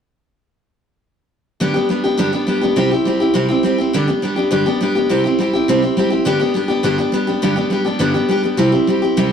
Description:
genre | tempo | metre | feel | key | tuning
rock | 206 BPM | 4/4 | straight | G major | A4 = 440 Hz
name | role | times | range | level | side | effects
picked steel-string acoustic guitar | solo | 1.6-9.3 s | G2 to G4 | -14 LUFS | equal | none
room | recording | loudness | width
moderate studio reverb, RT60 0.6 s | rough rehearsal-room recording | -14 LUFS | side -7 dB against mid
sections
1.6-3.9 A section; 3.9-9.3 B section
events
none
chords
1.6 G; 2.8 C; 3.9 G; 5.1 C; 6.3 G; 8.6 C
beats
| 1.60 1.89 2.18 2.48 | 2.77 3.06 3.35 3.64 | 3.93 4.22 4.51 4.80 | 5.10 5.39 5.68 5.97 | 6.26 6.55 6.84 7.13 | 7.42 7.71 8.00 8.29 | 8.59 8.88 9.17

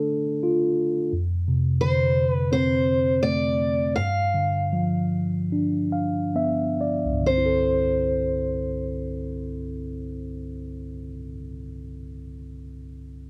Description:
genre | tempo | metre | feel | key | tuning
acoustic folk-pop ballad | 66-87 BPM | 4/4 | straight | C major | A4 = 440 Hz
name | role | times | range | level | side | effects
mellow tine electric piano | accompaniment | 0.0-13.3 s | C2 to F5 | -27 LUFS | equal | none
picked steel-string acoustic guitar | melody | 1.8-11.1 s | C5 to F5 | -26 LUFS | equal | none
room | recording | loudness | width
moderate studio reverb, RT60 0.7 s | none | -24 LUFS | mono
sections
0.0-7.3 A section; 7.3-10.9 B section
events
slowing down 1.1-7.3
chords
0.0 Dm; 1.1 F6; 4.0 G7; 7.3 C69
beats
0.43 | 1.12 1.81 2.51 3.22 | 3.96 4.72 5.52 6.36 | 7.25 8.16 9.06 9.97

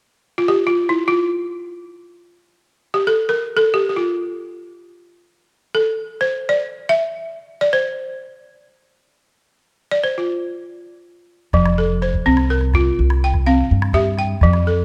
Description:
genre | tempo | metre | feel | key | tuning
west african traditional, West African string and xylophone music | free time | none | none | F major | A4 = 441 Hz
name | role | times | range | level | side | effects
balafon | arpeggios | 0.4-14.8 s | F3 to G5 | -20 LUFS | equal | none
upright bass | bass | 11.5-14.8 s | F1 to G2 | -20 LUFS | equal | none
calabash | percussion | 11.5-14.7 s | none | -24 LUFS | equal | none
room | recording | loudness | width
moderate recital hall reverb, RT60 1.7 s | none | -19 LUFS | mono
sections
0.0-11.5 A section; 11.5-14.8 B section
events
balafon solo 0.0-11.5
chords
0.0 N.C.; 11.5 F; 13.0 C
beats
free time

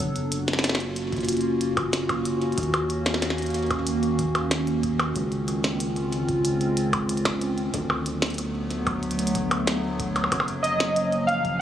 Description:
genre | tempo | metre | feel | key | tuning
IDM | 93 BPM | 4/4 | straight | unclear | A4 = 441 Hz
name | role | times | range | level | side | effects
warbly tape-like pad | sustained chords | 0.0-11.6 s | D3 to Gb4 | -27 LUFS | equal | chorus, built-in reverb, phaser
rubbery square bass | bass | 0.0-11.6 s | Gb1 to Eb2 | -29 LUFS | equal | none
electronic kick drum | drums | 0.0-11.6 s | none | -36 LUFS | equal | studio reverb
glitchy drum kit | drums | 0.0-11.6 s | hi-hat, percussion blips, snare drum | -27 LUFS | equal | studio reverb, digital delay
warbly lo-fi synth keys | melody | 10.6-11.6 s | Eb5 to F5 | -23 LUFS | right 1 dB | chorus
room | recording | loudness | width
light reverb, digital ambience | recorded on a phone in the room, club reverb, compression | -22 LUFS | side -10 dB against mid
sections
0.0-11.6 A section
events
none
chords
0.0 Gbmaj7; 2.6 Ebm7; 5.2 Dbmaj9; 7.7 D6; 10.3 Gbmaj7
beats
| 0.00 0.64 1.29 1.93 | 2.58 3.22 3.87 4.51 | 5.16 5.80 6.45 7.09 | 7.74 8.38 9.03 9.67 | 10.32 10.96 11.61

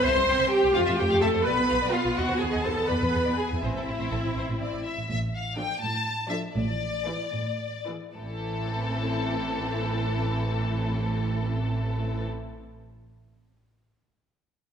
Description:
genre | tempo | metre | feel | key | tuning
quick classical-period movement for string orchestra | 71-85 BPM (dotted quarters) | 6/8 | straight | A minor | A4 = 445 Hz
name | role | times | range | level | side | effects
rich studio violin section | melody | 0.0-12.2 s | E4 to A5 | -33 LUFS | left 4 dB | none
warm symphonic violin section | second line | 0.0-12.2 s | E4 to C6 | -33 LUFS | left 2 dB | none
dark symphonic viola section | accompaniment | 0.0-12.2 s | E3 to C5 | -28 LUFS | equal | none
rich symphonic double bass section | bass | 0.0-12.2 s | A1 to F2 | -31 LUFS | right 2 dB | none
warm symphonic cello section | bass | 0.0-12.2 s | A2 to C4 | -32 LUFS | right 2 dB | none
room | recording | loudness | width
moderate scoring stage reverb, RT60 1.7 s | minimal, uncompressed stereo recording | -24 LUFS | side -7 dB against mid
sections
0.0-5.1 A section; 5.1-8.2 B section; 8.2-11.5 C section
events
slowing down 4.4-8.2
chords
0.0 C5; 0.7 F; 1.5 B(b5, no3); 2.2 B13/D#; 2.9 E; 3.6 Am; 5.1 Dm/A; 6.6 E7/A; 8.2 Am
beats
0.04 | 0.75 1.46 | 2.17 2.89 | 3.62 4.36 | 5.09 5.82 | 6.55 7.33 | 8.16 8.99 | 9.82 10.65

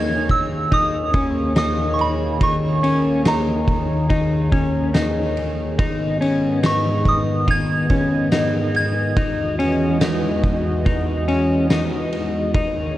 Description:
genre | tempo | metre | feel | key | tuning
dream pop | 71 BPM | 4/4 | straight | unclear | A4 = 435 Hz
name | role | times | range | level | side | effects
soft synth bell | melody | 0.0-11.2 s | A#5 to G#6 | -24 LUFS | right 2 dB | chorus, tape echo
warm analog pad | sustained chords | 0.0-13.0 s | D#2 to D#5 | -21 LUFS | equal | chorus
clean electric guitar | arpeggios | 0.0-13.0 s | C#4 to D#4 | -23 LUFS | left 2 dB | analog chorus, tape echo
oversized low-tuned drum kit | drums | 0.3-12.7 s | kick drum, ride cymbal, snare drum, tambourine | -23 LUFS | equal | none
room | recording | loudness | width
moderate studio reverb, RT60 0.6 s | cassette tape | -17 LUFS | side -14 dB against mid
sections
0.0-13.0 A section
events
none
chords
0.0 D#7sus4; 5.8 G#m; 9.2 Emaj7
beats
0.72 1.56 | 2.41 3.25 4.10 4.94 | 5.79 6.63 7.48 8.32 | 9.17 10.01 10.86 11.70 | 12.55

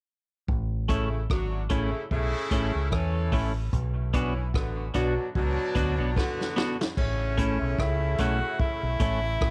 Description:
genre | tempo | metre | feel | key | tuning
roots reggae | 74 BPM | 4/4 | swing 58% on 16ths | A major | A4 = 440 Hz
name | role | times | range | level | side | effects
deep dub fingered electric bass | bass | 0.5-9.5 s | G#1 to E2 | -31 LUFS | equal | none
vintage drum kit | drums | 0.5-9.5 s | crash cymbal, hi-hat, kick drum, rim click, snare drum | -32 LUFS | equal | cassette tape
warm horn section | second line | 0.9-9.5 s | B2 to A4 | -35 LUFS | equal | cassette tape, dub echo
clean electric guitar | accompaniment | 0.9-9.3 s | A3 to F#4 | -35 LUFS | equal | cassette tape, dub echo
breathy tenor saxophone | melody | 7.0-9.5 s | C#4 to F#4 | -32 LUFS | equal | cassette tape, dub echo
room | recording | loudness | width
light reverb, small room ambience | home recording on cassette | -27 LUFS | mono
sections
0.5-7.0 A section; 7.0-9.5 B section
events
drum fill 6.2-7.0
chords
0.5 A; 3.7 Bm; 7.0 A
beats
| 0.48 1.29 2.11 2.92 | 3.73 4.54 5.35 6.16 | 6.97 7.79 8.60 9.41

